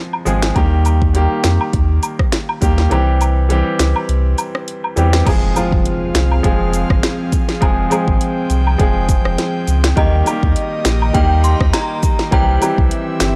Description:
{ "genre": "dancehall", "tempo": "102 BPM", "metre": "4/4", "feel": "swing 56% on 16ths", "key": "F minor", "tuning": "A4 = 439 Hz", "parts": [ { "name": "clear baby grand piano", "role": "accompaniment", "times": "0.0-13.4 s", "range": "Eb3 to Ab4", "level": "-22 LUFS", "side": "equal", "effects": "none" }, { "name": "woodblock and cabasa", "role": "percussion", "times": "0.1-13.4 s", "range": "none", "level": "-25 LUFS", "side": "equal", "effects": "none" }, { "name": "warm sub bass", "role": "bass", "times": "0.3-13.4 s", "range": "F1 to F2", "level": "-18 LUFS", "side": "equal", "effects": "none" }, { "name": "afro-pop drum kit", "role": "drums", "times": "0.4-13.4 s", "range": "crash cymbal, finger snaps, hi-hat, kick drum, rim click, snare drum", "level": "-19 LUFS", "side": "equal", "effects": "none" }, { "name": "airy breathy pad", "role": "sustained chords", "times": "5.3-13.4 s", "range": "Eb3 to G5", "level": "-26 LUFS", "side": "equal", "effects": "chorus, sidechain pumping" }, { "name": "impact", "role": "sound effects", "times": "5.4-7.6 s", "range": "none", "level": "-28 LUFS", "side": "equal", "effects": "none" }, { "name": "synth chime", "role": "second line", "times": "10.0-13.4 s", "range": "Eb5 to C6", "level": "-25 LUFS", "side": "equal", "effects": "ensemble chorus, tremolo, analog delay" } ], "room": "little or no reverb", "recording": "dry, gritty hardware recording", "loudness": "-15 LUFS", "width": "mono", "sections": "0.0-5.3 A section; 5.3-13.4 B section", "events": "kick muted 2.9-5.3; impact 5.3-7.6", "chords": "0.0 Fm; 0.6 Eb; 2.9 C; 5.3 Fm; 10.0 Eb; 12.3 C" }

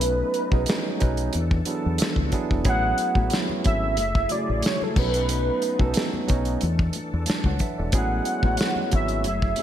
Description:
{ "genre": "R&B, neo-soul", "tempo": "91 BPM", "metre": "4/4", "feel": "swing 54% on 16ths", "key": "A major", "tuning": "A4 = 440 Hz", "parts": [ { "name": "warm velvety synth lead", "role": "melody", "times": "0.0-9.6 s", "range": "A4 to F#5", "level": "-26 LUFS", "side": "right 1 dB", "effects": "chorus" }, { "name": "barky tine electric piano", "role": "accompaniment", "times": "0.0-9.6 s", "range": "C#3 to A5", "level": "-29 LUFS", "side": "right 4 dB", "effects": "overdrive" }, { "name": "bright tonewheel organ", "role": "sustained chords", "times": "0.0-9.6 s", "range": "E3 to A4", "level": "-34 LUFS", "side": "left 2 dB", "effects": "overdrive, chorus vibrato, slow rotary speaker" }, { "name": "deep dub fingered electric bass", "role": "bass", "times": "0.0-9.5 s", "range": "E1 to E2", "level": "-26 LUFS", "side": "left 1 dB", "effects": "none" }, { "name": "warm soul drum kit", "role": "drums", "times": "0.0-9.6 s", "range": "crash cymbal, hi-hat, kick drum, snare drum", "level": "-25 LUFS", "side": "equal", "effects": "gated reverb" }, { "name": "congas", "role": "percussion", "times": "2.6-9.6 s", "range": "none", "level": "-38 LUFS", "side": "left 4 dB", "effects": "none" } ], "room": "light reverb, studio ambience", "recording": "bright 1980s-style digital production", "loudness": "-21 LUFS", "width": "side -10 dB against mid", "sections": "0.0-9.6 A section", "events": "tine electric piano fill 6.9-7.9", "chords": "0.0 B7; 1.3 E7sus4; 2.7 Amaj13; 4.0 F#m9; 5.0 B7; 6.6 E7sus4; 7.9 Amaj13" }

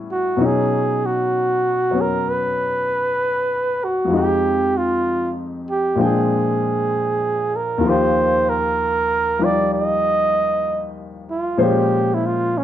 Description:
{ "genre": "jazz", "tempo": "64 BPM", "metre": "4/4", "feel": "swing 66% on 8ths", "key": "Eb major", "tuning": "A4 = 440 Hz", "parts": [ { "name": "warm baby grand piano", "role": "accompaniment", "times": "0.0-12.6 s", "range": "Eb2 to G5", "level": "-21 LUFS", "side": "left 3 dB", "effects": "none" }, { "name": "warm flugelhorn", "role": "melody", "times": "0.1-12.6 s", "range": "Db4 to Eb5", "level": "-19 LUFS", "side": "right 2 dB", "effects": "none" } ], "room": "light reverb", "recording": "dark, warm production", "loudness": "-17 LUFS", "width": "side -11 dB against mid", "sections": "0.0-12.6 A section", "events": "none", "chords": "0.4 Badd9; 4.1 Fm9; 6.0 Bb13; 7.8 Ebadd9; 11.6 Bbm7" }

